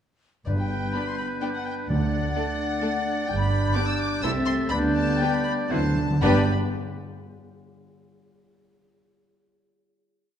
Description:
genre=quick classical-period movement for symphony orchestra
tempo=114-130 BPM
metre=3/4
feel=rubato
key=G major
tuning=A4 = 440 Hz
part: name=warm studio violin section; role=melody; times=0.5-6.5 s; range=D5 to E6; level=-32 LUFS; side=left 4 dB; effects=none
part: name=clear oboe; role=second line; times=0.5-6.4 s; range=B4 to E5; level=-32 LUFS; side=right 1 dB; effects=none
part: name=mellow clarinet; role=second line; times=0.5-6.4 s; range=C4 to E4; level=-34 LUFS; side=left 3 dB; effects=none
part: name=mellow flute section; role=second line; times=0.5-6.5 s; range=F#6 to A6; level=-35 LUFS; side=equal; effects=none
part: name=dark French horn section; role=sustained chords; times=0.5-6.4 s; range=F#3 to D4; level=-31 LUFS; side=left 1 dB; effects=none
part: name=dark studio double bass section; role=bass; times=0.5-6.5 s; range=G1 to D2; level=-30 LUFS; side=right 2 dB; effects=none
part: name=warm studio cello section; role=bass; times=0.5-6.5 s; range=D2 to D3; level=-29 LUFS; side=right 2 dB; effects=none
part: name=timpani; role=percussion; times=0.5-2.6, 5.7-6.5 s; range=G2 to D3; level=-31 LUFS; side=left 1 dB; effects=none
part: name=rich studio violin section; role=second line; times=0.9-6.5 s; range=F#4 to D5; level=-32 LUFS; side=left 4 dB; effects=none
part: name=warm studio viola section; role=accompaniment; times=0.9-6.5 s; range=A3 to E4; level=-30 LUFS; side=right 1 dB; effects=none
room=wet scoring stage reverb, RT60 1.6 s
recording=dark, warm production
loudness=-22 LUFS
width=side -9 dB against mid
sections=0.5-6.2 A section; 6.2-7.7 final chord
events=slowing down 2.6-6.2; timpani fill 5.7-6.2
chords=0.5 G; 1.9 D; 3.3 G; 4.2 Am/C; 4.7 G/D; 5.7 D13; 6.2 G

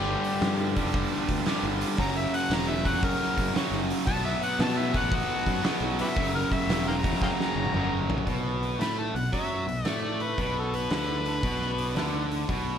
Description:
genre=blues rock power trio and southern rock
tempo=114 BPM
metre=4/4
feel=swing 67% on 8ths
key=B minor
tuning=A4 = 440 Hz
part: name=overdriven harmonica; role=melody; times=0.0-12.3 s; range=F#4 to B5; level=-32 LUFS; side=left 3 dB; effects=none
part: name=overdriven tonewheel organ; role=sustained chords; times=0.0-12.8 s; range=D4 to D5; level=-42 LUFS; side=right 4 dB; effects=none
part: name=distorted electric guitar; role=riff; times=0.0-12.8 s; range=F#2 to B3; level=-29 LUFS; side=equal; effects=overdrive
part: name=growling fingered electric bass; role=bass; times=0.0-12.8 s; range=E1 to B2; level=-32 LUFS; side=equal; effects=overdrive
part: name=oversized low-tuned drum kit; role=drums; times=0.2-12.7 s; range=hi-hat, kick drum, snare drum, toms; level=-30 LUFS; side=equal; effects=none
room=little or no reverb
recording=none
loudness=-25 LUFS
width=side -8 dB against mid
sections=0.0-8.3 A section; 8.3-12.8 B section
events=harmonica solo 0.0-8.3; drum fill 7.2-8.3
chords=0.0 G7; 2.0 F#7b9; 4.1 Bm7; 6.2 F#7b9; 8.3 Bm

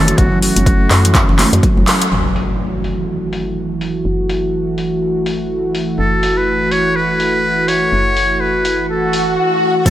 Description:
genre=afro house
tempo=124 BPM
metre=4/4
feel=swing 58% on 16ths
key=F# minor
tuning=A4 = 440 Hz
part: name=trumpet with metal mute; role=melody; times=0.0-1.3, 6.0-9.9 s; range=F#4 to C#5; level=-17 LUFS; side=equal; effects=tape echo
part: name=warm analog pad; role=sustained chords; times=0.0-9.9 s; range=E3 to F#4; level=-19 LUFS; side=right 1 dB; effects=chorus, sidechain pumping
part: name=woody FM bass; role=bass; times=0.0-9.9 s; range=F#1 to F#2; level=-21 LUFS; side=equal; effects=sidechain pumping
part: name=kalimba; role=arpeggios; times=0.1-1.9, 9.9 s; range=E3 to F#4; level=-22 LUFS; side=left 1 dB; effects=sidechain pumping, tape echo
part: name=deep house drum kit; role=drums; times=0.1-9.9 s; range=crash cymbal, handclaps, hi-hat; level=-19 LUFS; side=left 1 dB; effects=overdrive, low-pass filter on hats, low-pass filter on snare, low-pass filter on cymbals
part: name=electronic kick drum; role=drums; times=0.2-1.7, 9.9 s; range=none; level=-14 LUFS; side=equal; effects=overdrive
part: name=congas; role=percussion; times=0.2-1.9, 9.9 s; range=none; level=-20 LUFS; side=right 2 dB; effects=none
part: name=impact and swell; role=sound effects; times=2.1-4.1, 9.0-9.9 s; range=none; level=-19 LUFS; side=left 1 dB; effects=none
part: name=egg shaker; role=percussion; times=9.9 s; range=none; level=-22 LUFS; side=left 2 dB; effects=none
room=light reverb, small room ambience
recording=none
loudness=-13 LUFS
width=side -12 dB against mid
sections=0.0-2.1 A section; 2.1-9.9 B section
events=band accent 1.9; impact 2.1-4.1; filter sweep on analog synth pad 2.1-9.9; swell 9.0-9.9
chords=0.0 F#m7

